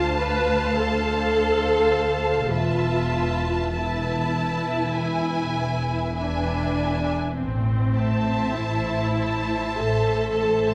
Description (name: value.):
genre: classical, slow romantic movement for string orchestra.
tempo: 47-55 BPM.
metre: 4/4.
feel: rubato.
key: A minor.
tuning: A4 = 440 Hz.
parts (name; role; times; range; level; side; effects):
warm symphonic violin section; melody; 0.0-10.7 s; G#5 to A5; -32 LUFS; equal; none.
warm symphonic violin section; second line; 0.0-10.7 s; B4 to F5; -32 LUFS; equal; none.
warm symphonic viola section; accompaniment; 0.0-10.7 s; C4 to B4; -27 LUFS; equal; none.
rich symphonic cello section; bass; 0.0-10.7 s; D2 to A2; -31 LUFS; equal; none.
warm symphonic double bass section; bass; 0.0-10.7 s; E1 to D2; -30 LUFS; equal; none.
room: wet scoring stage reverb, RT60 2.0 s.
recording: none.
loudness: -23 LUFS.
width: mono.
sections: 0.0-10.7 A section.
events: none.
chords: 0.0 Dm7; 2.5 Esus4; 5.0 E; 7.4 Am.